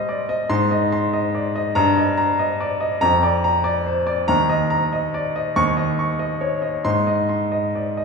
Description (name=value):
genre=classical, virtuoso piano study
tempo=95 BPM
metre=4/4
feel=rubato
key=Eb major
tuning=A4 = 439 Hz
part: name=clear baby grand piano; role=solo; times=0.0-8.0 s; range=Eb2 to Db6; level=-18 LUFS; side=equal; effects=none
room=wet concert hall reverb, RT60 2.0 s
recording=recorded in a church or concert hall, studio ambience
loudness=-18 LUFS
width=side -4 dB against mid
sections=0.0-8.0 A section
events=none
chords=0.5 Ab; 1.7 Eb/G; 3.0 Bb/F; 4.3 Eb5; 5.5 Dbsus2/Eb; 6.8 Ab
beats=| 0.48 1.11 1.74 2.37 | 3.00 3.63 4.27 4.91 | 5.55 6.18 6.83 7.50